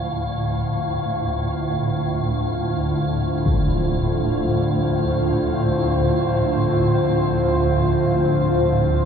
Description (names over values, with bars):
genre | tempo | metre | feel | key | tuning
dark ambient drone | free time | none | none | D minor | A4 = 440 Hz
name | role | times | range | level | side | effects
dark analog pad | sustained chords | 0.0-9.1 s | D3 to D5 | -21 LUFS | equal | chorus
swarming drone | drone | 0.0-9.1 s | D2 to A2 | -22 LUFS | equal | built-in reverb
icy glass pad | texture | 0.0-9.1 s | F5 | -31 LUFS | right 1 dB | chorus, built-in reverb
impact | percussion | 3.5-3.7 s | none | -26 LUFS | left 1 dB | low-pass filter on sfx
room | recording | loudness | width
wet huge ambient reverb, RT60 7.5 s | dark, warm production, nothing above 7.5 kHz | -18 LUFS | side -7 dB against mid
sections
0.0-9.1 A section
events
none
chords
0.0 Dm7